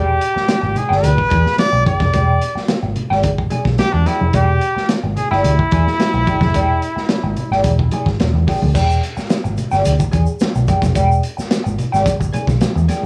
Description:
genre	funk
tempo	109 BPM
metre	4/4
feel	straight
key	E mixolydian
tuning	A4 = 436 Hz
part	clear trumpet	melody	0.0-8.2 s	D4 to D5	-22 LUFS	equal	tube saturation
part	electric guitar through a small old amp	accompaniment	0.0-13.1 s	G#4 to G#5	-23 LUFS	equal	wah
part	vintage muted picked electric bass	bass	0.0-13.1 s	E1 to E2	-20 LUFS	equal	none
part	crunchy breakbeat drum kit	drums	0.2-13.0 s	crash cymbal, hi-hat, kick drum, snare drum	-22 LUFS	equal	none
part	congas	percussion	0.5-13.1 s	none	-27 LUFS	equal	none
part	tube shaker	percussion	8.8-13.0 s	none	-42 LUFS	equal	none
room	light reverb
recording	small room ambience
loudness	-16 LUFS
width	mono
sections	0.0-8.8 A section; 8.8-13.1 B section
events	none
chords	0.0 E7#9

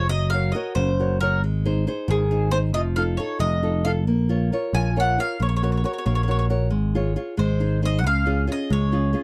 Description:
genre	italian folk, Italian serenade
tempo	91 BPM (dotted quarters)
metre	6/8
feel	straight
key	Db major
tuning	A4 = 440 Hz
part	mandolin	melody	0.0-9.2 s	Ab4 to Ab5	-28 LUFS	equal	none
part	nylon-string guitar	accompaniment	0.0-9.2 s	C3 to Db5	-29 LUFS	equal	none
part	picked electric bass	bass	0.0-9.1 s	F1 to Db2	-24 LUFS	equal	none
room	little or no reverb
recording	dry, close 1970s-style studio recording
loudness	-22 LUFS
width	mono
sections	0.0-9.2 A section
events	none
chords	0.1 Gb; 1.4 Ab; 2.7 F7; 4.1 Bbm; 5.4 Gb/Bb; 6.7 Db/Ab; 7.4 Ab; 8.0 Db

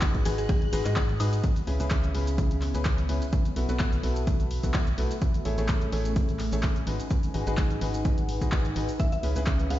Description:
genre	piano house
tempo	127 BPM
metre	4/4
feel	swing 54% on 16ths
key	C# minor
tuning	A4 = 440 Hz
part	string machine, violins	sustained chords	0.0-1.4 s	F#6	-48 LUFS	left 1 dB	ensemble chorus, sidechain pumping
part	clear concert grand piano	riff	0.0-9.8 s	C#3 to D#5	-33 LUFS	left 1 dB	sidechain pumping, digital delay
part	organ-like FM bass	bass	0.0-9.8 s	G#1 to G#2	-29 LUFS	equal	sidechain pumping
part	electronic kick drum	drums	0.0-9.6 s	none	-26 LUFS	equal	overdrive
part	punchy analog drum machine	drums	0.0-9.8 s	handclaps, hi-hat, ride cymbal, shaker, woodblock	-36 LUFS	left 1 dB	overdrive
part	mallet-like synth pluck	melody	0.3-1.2, 9.0-9.8 s	G#4 to F#5	-35 LUFS	left 3 dB	chorus, digital delay
part	warbly tape-like pad	texture	2.1-9.8 s	A3 to A5	-37 LUFS	equal	chorus, built-in reverb, sidechain pumping
room	digital ambience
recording	played on a big sound system in a bare room, large studio reverb, nothing above 7.6 kHz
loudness	-24 LUFS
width	side -14 dB against mid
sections	0.0-1.4 A section; 1.4-9.8 B section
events	drop 0.0-1.4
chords	0.0 G#m7; 1.4 C#m7; 3.3 B7sus4; 5.2 Amaj7; 6.9 G#m7; 9.0 C#m7

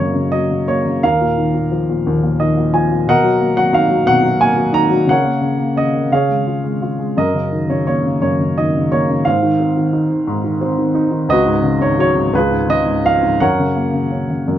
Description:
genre	classical, lyrical solo piano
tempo	58 BPM (dotted quarters)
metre	6/8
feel	rubato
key	F# major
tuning	A4 = 440 Hz
part	dark upright piano	solo	0.0-14.6 s	C#2 to A#5	-13 LUFS	equal	none
room	light reverb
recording	dark, warm production, nothing above 7.5 kHz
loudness	-13 LUFS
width	side -11 dB against mid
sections	0.0-14.6 A section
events	upright piano fill 2.1-3.1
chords	0.0 F#; 1.0 D#sus2; 3.1 Bmaj7; 5.1 F#/C#; 6.1 C#; 7.2 F#6; 9.3 G#; 11.3 C#7sus4; 12.3 C#; 13.4 F#

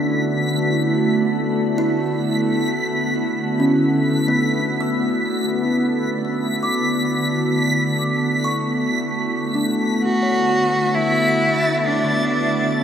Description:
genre	ambient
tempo	66 BPM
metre	4/4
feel	straight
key	D major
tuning	A4 = 440 Hz
part	glassy FM pad	sustained chords	0.0-12.8 s	D3 to F#4	-20 LUFS	equal	ensemble chorus, built-in reverb
part	kalimba	arpeggios	0.0-12.8 s	D3 to E6	-26 LUFS	equal	tape echo
part	backwards swelling texture	texture	0.0-12.8 s	A6 to B6	-26 LUFS	equal	built-in reverb
part	rich cello	melody	10.0-12.8 s	C#4 to F#4	-18 LUFS	equal	none
room	wet huge ambient reverb, RT60 8.5 s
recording	none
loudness	-17 LUFS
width	side -8 dB against mid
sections	0.0-12.8 A section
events	fade-out on kalimba 0.0-12.8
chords	0.0 D69

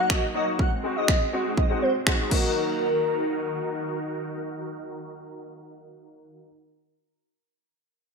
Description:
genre	dance-pop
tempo	122 BPM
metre	4/4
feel	straight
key	Eb minor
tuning	A4 = 440 Hz
part	airy dreamy lead	melody	0.0-4.0 s	Bb4 to Gb5	-27 LUFS	left 1 dB	chorus, sidechain pumping, low-pass filter, digital delay
part	filtered supersaw swell	sustained chords	0.0-6.5 s	Gb2 to Bb4	-33 LUFS	right 1 dB	phaser, sidechain pumping, low-pass filter
part	clear concert grand piano	accompaniment	0.1-6.5 s	Gb3 to Gb4	-30 LUFS	left 1 dB	ensemble chorus, sidechain pumping, low-pass filter
part	house drum kit	drums	0.1-2.4 s	crash cymbal, finger snaps, kick drum	-23 LUFS	equal	gated reverb
room	light reverb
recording	bright 1980s-style digital production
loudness	-23 LUFS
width	side -5 dB against mid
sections	0.0-2.6 A section; 2.6-6.5 B section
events	none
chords	0.0 Ebm/Gb; 0.6 Ab7; 2.3 Ebm

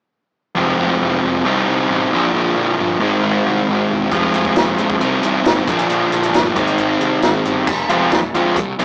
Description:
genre	indie rock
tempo	135 BPM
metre	4/4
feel	straight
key	unclear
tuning	A4 = 439 Hz
part	sludgy distorted guitar	riff	0.6-8.8 s	F2 to F4	-18 LUFS	equal	overdrive
part	fuzz picked electric bass	bass	0.6-8.8 s	E1 to D2	-25 LUFS	equal	overdrive
part	compact cocktail drum kit	drums	4.1-8.8 s	crash cymbal, hi-hat, kick drum, snare drum	-22 LUFS	equal	none
room	light reverb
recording	rough rehearsal-room recording, tube saturation, small speaker sound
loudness	-17 LUFS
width	mono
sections	0.6-7.7 A section; 7.7-8.8 B section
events	none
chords	0.6 Fm; 1.4 Cm; 2.1 Bb5; 3.0 Ab; 4.1 Fm; 5.0 Cm; 5.7 Bb5; 6.6 Ab; 7.7 Fm

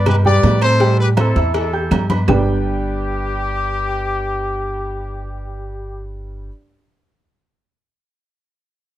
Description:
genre	latin, salsa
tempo	162 BPM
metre	4/4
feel	straight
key	G major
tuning	A4 = 438 Hz
part	mellow trumpet section	melody	0.0-6.0 s	E4 to D5	-22 LUFS	left 3 dB	none
part	dark upright piano	accompaniment	0.0-6.5 s	G3 to G6	-23 LUFS	right 3 dB	none
part	upright bass	bass	0.0-6.5 s	G1 to A2	-19 LUFS	equal	none
part	agogo bells and timbales	percussion	0.1-2.4 s	none	-26 LUFS	right 9 dB	none
part	claves	percussion	0.1-2.4 s	none	-32 LUFS	right 7 dB	none
part	congas	percussion	0.1-2.4 s	none	-22 LUFS	left 1 dB	none
part	cowbell and bongos	percussion	0.1-2.4 s	none	-27 LUFS	left 8 dB	none
room	little or no reverb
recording	dry, close 1970s-style studio recording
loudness	-15 LUFS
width	side -13 dB against mid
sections	0.0-2.3 A section; 2.3-5.2 B section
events	none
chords	0.0 G; 0.8 Am7; 2.3 G

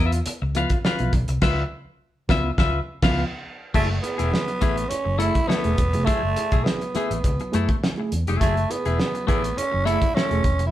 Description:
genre	funk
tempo	103 BPM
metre	4/4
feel	straight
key	unclear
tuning	A4 = 440 Hz
part	clean electric guitar	accompaniment	0.0-10.6 s	A3 to E#5	-27 LUFS	left 6 dB	none
part	mellow reed electric piano	stabs	0.0-10.7 s	C#3 to G#4	-30 LUFS	right 3 dB	fast tremolo
part	vintage muted fingered electric bass	bass	0.0-10.7 s	E1 to F#2	-25 LUFS	equal	none
part	cloth-damped thuddy drum kit	drums	0.1-10.7 s	crash cymbal, hi-hat, kick drum, snare drum	-24 LUFS	equal	none
part	growling tenor saxophone	melody	3.8-10.7 s	A3 to E4	-25 LUFS	right 2 dB	none
room	moderate studio reverb, RT60 0.8 s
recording	band playing live in one room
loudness	-20 LUFS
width	side -13 dB against mid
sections	0.0-3.8 A section; 3.8-10.7 B section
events	band accent 1.4-3.8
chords	0.0 C#7#9; 3.8 F#m9

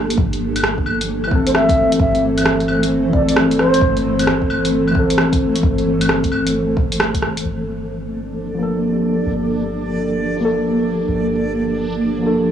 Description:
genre	future garage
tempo	132 BPM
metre	4/4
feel	swing 65% on 16ths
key	G dorian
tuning	A4 = 444 Hz
part	granular cloud pad	sustained chords	0.0-12.5 s	E3 to C5	-22 LUFS	right 1 dB	built-in reverb, vintage 12-bit sampler grit, sidechain pumping
part	soft 808-style bass	bass	0.0-12.5 s	G1	-28 LUFS	equal	sidechain pumping
part	deep house drum kit	drums	0.1-7.4 s	claves, hi-hat, rim click	-20 LUFS	equal	none
part	electronic kick drum	drums	0.2-7.2 s	none	-19 LUFS	equal	none
part	muted felt-like synth keys	accompaniment	1.3-12.5 s	E3 to A4	-18 LUFS	left 1 dB	chorus, sidechain pumping, tape echo
part	mellow baroque flute	melody	1.5-4.0 s	C5 to E5	-20 LUFS	right 2 dB	tape echo
part	backwards swelling texture	texture	8.3-12.5 s	D4 to D5	-29 LUFS	right 2 dB	built-in reverb
room	light reverb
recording	dry, gritty hardware recording, cassette tape, small room ambience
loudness	-15 LUFS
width	side -9 dB against mid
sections	0.0-7.5 A section; 7.5-12.5 B section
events	none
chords	0.2 Am/G; 7.5 Gm9

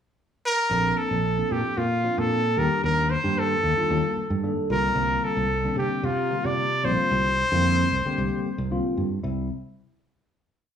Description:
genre	jazz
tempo	112 BPM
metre	4/4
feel	straight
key	unclear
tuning	A4 = 440 Hz
part	clear trumpet	melody	0.5-8.7 s	F4 to D5	-24 LUFS	equal	none
part	bright tine electric piano	accompaniment	0.7-9.5 s	D3 to A4	-29 LUFS	left 2 dB	phaser
part	fretless electric bass	bass	0.7-9.5 s	Bb1 to C3	-26 LUFS	right 1 dB	none
room	moderate large studio reverb, RT60 0.9 s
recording	band playing live in one room, studio ambience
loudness	-22 LUFS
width	side -8 dB against mid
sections	0.0-0.7 pickup bar; 0.7-9.2 A section; 9.2-10.8 final chord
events	none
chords	0.0 N.C.; 0.7 Bbmaj9; 2.6 Ebmaj7; 4.7 C9sus4; 9.2 C

